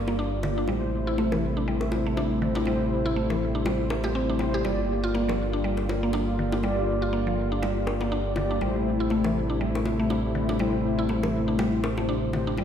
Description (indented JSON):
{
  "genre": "afro house",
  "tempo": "121 BPM",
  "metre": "4/4",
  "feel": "swing 56% on 16ths",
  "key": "unclear",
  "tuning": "A4 = 440 Hz",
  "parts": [
    { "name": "warm analog pad", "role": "sustained chords", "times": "0.0-12.6 s", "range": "C3 to F4", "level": "-30 LUFS", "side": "equal", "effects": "chorus" },
    { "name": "mellow synth brass", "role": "stabs", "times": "0.0-12.6 s", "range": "A3 to D5", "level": "-29 LUFS", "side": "left 2 dB", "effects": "chorus, dub echo" },
    { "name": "smooth gliding synth bass", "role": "bass", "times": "0.0-12.6 s", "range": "G1 to A1", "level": "-30 LUFS", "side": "right 1 dB", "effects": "none" },
    { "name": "mallet-like synth pluck", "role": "arpeggios", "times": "0.1-12.6 s", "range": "D3 to G4", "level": "-30 LUFS", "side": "left 1 dB", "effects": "chorus, cassette tape, dub echo" },
    { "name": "bongos", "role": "percussion", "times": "0.1-12.6 s", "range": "none", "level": "-34 LUFS", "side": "left 3 dB", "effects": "none" }
  ],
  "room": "moderate scoring stage reverb, RT60 2.0 s, digital ambience",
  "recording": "played on a big sound system in a bare room, stone room reverb",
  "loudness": "-23 LUFS",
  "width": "side -8 dB against mid",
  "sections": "0.0-12.6 A section",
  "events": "none",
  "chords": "0.0 Gm7; 0.7 Am7; 4.7 Gm7; 8.6 Am7",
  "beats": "0.19 | 0.68 1.18 1.67 2.17 | 2.67 3.16 3.66 4.15 | 4.65 5.15 5.64 6.14 | 6.63 7.13 7.62 8.12 | 8.62 9.11 9.61 10.10 | 10.60 11.10 11.59 12.09 | 12.58"
}